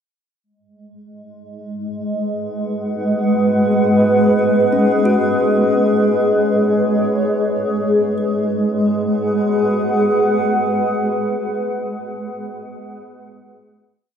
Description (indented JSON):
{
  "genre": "ambient",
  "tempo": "free time",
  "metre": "none",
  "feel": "none",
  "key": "G# minor",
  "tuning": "A4 = 444 Hz",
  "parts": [
    { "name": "granular cloud pad", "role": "sustained chords", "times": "1.7-12.0 s", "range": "G#3 to F#5", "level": "-16 LUFS", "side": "equal", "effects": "built-in reverb" },
    { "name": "kalimba", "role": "arpeggios", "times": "4.7-11.6 s", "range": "C#4 to B4", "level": "-27 LUFS", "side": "left 3 dB", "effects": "tape echo" }
  ],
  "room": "wet huge ambient reverb, RT60 7.5 s",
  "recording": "dark, warm production",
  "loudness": "-15 LUFS",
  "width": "side -8 dB against mid",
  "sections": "0.4-8.2 A section; 8.2-12.1 final chord",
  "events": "fade-out on kalimba 0.4-8.2",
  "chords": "0.4 G#m7; 4.3 G#madd11; 8.2 G#m7"
}